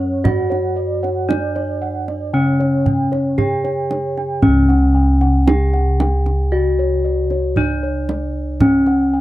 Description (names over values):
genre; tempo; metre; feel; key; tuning
Javanese gamelan; 57 BPM; 4/4; straight; unclear; A4 = 435 Hz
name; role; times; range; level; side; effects
gamelan-type bronze metallophone; melody; 0.0-9.2 s; C#4 to G#4-40c; -19 LUFS; left 1 dB; none
gamelan-type bronze metallophone; arpeggios; 0.0-4.4 s; C#5 to G#5-40c; -27 LUFS; right 7 dB; none
gamelan-type bossed gongs; bass; 0.0-9.2 s; C#2 to F#4+30c; -18 LUFS; equal; none
gamelan-type bossed gongs; arpeggios; 0.2-9.2 s; C#5 to G#5-40c; -26 LUFS; left 3 dB; none
kendang; percussion; 0.3-9.0 s; none; -20 LUFS; right 2 dB; none
room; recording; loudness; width
little or no reverb; dry, close 1970s-style studio recording; -15 LUFS; side -15 dB against mid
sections
0.0-4.4 A section; 4.4-9.2 A section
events
none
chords
none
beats
| 0.25 1.29 2.34 3.38 | 4.43 5.47 6.52 7.57 | 8.61